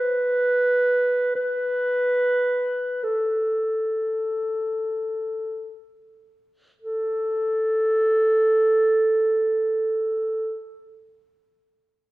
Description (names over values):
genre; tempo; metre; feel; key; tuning
classical, free, expressive piece for unaccompanied clarinet; free time; none; none; unclear; A4 = 440 Hz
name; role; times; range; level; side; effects
dark clarinet; solo; 0.0-10.6 s; A4 to B4; -20 LUFS; right 1 dB; none
room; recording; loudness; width
wet scoring stage reverb, RT60 1.7 s; recorded in a church or concert hall; -20 LUFS; side -18 dB against mid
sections
0.0-6.8 A section; 6.8-12.1 B section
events
slowing down 0.0-6.8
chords
none